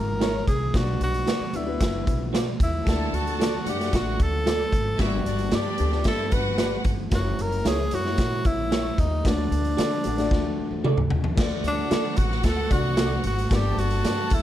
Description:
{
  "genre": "uptempo 1960s-style soul",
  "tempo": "113 BPM",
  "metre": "4/4",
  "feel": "straight",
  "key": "D major",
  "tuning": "A4 = 440 Hz",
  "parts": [
    { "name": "breathy tenor saxophone", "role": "melody", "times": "0.0-14.4 s", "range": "D4 to B4", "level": "-28 LUFS", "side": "equal", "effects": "plate reverb" },
    { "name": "dark concert grand piano", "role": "accompaniment", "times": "0.0-14.3 s", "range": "G2 to D5", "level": "-32 LUFS", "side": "left 5 dB", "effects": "none" },
    { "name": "upright bass", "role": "bass", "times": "0.0-14.4 s", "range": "F#1 to D3", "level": "-28 LUFS", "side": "equal", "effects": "none" },
    { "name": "electric guitar through a small old amp", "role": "stabs", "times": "0.2-14.2 s", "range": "E4 to D5", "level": "-30 LUFS", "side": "right 4 dB", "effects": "analog chorus" },
    { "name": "raw garage drum kit", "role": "drums", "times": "0.2-14.4 s", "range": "crash cymbal, hi-hat, kick drum, snare drum, toms", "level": "-25 LUFS", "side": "equal", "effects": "none" },
    { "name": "warm studio violin section", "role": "second line", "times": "2.9-6.8, 11.4-14.4 s", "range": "D4 to A5", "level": "-33 LUFS", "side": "left 1 dB", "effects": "none" }
  ],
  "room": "light reverb",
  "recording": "none",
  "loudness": "-21 LUFS",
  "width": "side -12 dB against mid",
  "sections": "0.0-11.4 A section; 11.4-14.4 B section",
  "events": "drum fill 10.3-11.4",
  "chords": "0.0 F#7; 0.7 Bm; 2.9 D; 5.0 G; 7.1 F#7; 9.2 D; 13.5 G"
}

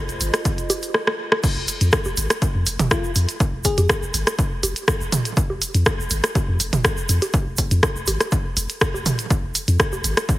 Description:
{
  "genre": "minimal techno",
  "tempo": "122 BPM",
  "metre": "4/4",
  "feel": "straight",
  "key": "F minor",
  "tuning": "A4 = 436 Hz",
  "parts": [
    { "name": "warbly tape-like pad", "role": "texture", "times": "0.0-0.9 s", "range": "F4 to Eb5", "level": "-35 LUFS", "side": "right 4 dB", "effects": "chorus, built-in reverb, sidechain pumping" },
    { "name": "punchy sub bass", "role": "bass", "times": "0.1-10.1 s", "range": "F1 to F2", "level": "-21 LUFS", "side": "equal", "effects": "sidechain pumping" },
    { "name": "minimal click drum kit", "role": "drums", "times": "0.1-10.4 s", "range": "crash cymbal, hi-hat, rim click", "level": "-22 LUFS", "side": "equal", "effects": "overdrive, small room reverb" },
    { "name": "egg shaker", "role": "percussion", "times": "0.1-10.4 s", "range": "none", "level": "-30 LUFS", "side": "right 3 dB", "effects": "none" },
    { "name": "electronic kick drum", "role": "drums", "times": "0.5-10.4 s", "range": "none", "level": "-23 LUFS", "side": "equal", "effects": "small room reverb" },
    { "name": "electronic bongos and toms", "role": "percussion", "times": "0.7-10.0 s", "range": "none", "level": "-25 LUFS", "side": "right 2 dB", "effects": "small room reverb, digital delay" },
    { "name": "bell-like FM electric piano", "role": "melody", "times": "2.9-4.0 s", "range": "F4 to Ab4", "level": "-27 LUFS", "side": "left 4 dB", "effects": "chorus, digital delay" }
  ],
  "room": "light reverb",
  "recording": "heavily compressed radio sound",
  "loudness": "-18 LUFS",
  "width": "side -17 dB against mid",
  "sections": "0.0-1.4 A section; 1.4-10.4 B section",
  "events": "drum fill 0.9-1.4; drop 1.4-10.4",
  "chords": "0.0 F5"
}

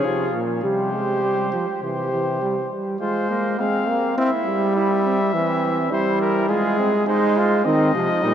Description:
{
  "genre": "classical, imitative canzona for brass ensemble",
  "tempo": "103 BPM",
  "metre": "4/4",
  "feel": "straight",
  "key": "F minor",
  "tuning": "A4 = 440 Hz",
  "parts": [
    { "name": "warm trumpet", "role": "melody", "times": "0.0-8.3 s", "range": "Ab4 to F5", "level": "-26 LUFS", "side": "left 5 dB", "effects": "none" },
    { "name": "mellow flugelhorn", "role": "second line", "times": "0.0-8.3 s", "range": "Bb3 to G4", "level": "-25 LUFS", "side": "right 3 dB", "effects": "none" },
    { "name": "clear trombone", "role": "accompaniment", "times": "0.0-8.3 s", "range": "E3 to C4", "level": "-21 LUFS", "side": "right 1 dB", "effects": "none" },
    { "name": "warm bass trombone", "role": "bass", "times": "0.0-2.7, 7.7-8.3 s", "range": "Bb2 to Eb3", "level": "-25 LUFS", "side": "equal", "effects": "none" }
  ],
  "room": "wet cathedral reverb, RT60 5.2 s",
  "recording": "in a vast, echoing space",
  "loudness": "-18 LUFS",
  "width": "side -9 dB against mid",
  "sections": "0.0-3.0 A section; 3.0-8.3 B section",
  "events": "none",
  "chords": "0.0 Bb5; 0.6 C5; 1.8 C; 3.0 Fm/Ab; 4.2 C (rootless); 5.3 C/E; 6.5 Fm/Ab; 7.7 Cm"
}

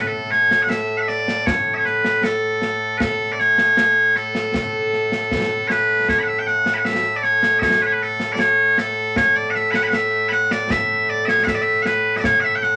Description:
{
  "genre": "scottish traditional, Scottish pipe music",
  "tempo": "78 BPM",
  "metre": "2/4",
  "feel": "straight",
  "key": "A major",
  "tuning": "A4 = 438 Hz",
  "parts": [
    { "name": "loud bright bagpipes", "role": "melody", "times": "0.0-12.8 s", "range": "A2 to B5", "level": "-19 LUFS", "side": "equal", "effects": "none" },
    { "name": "concert snare drum and concert bass drum", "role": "drums", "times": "0.3-12.7 s", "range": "none", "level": "-29 LUFS", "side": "equal", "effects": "none" }
  ],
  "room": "wet small room ambience, RT60 0.5 s",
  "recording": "none",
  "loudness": "-18 LUFS",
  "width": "mono",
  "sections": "0.0-6.1 A section; 6.1-12.8 B section",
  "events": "none",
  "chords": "none"
}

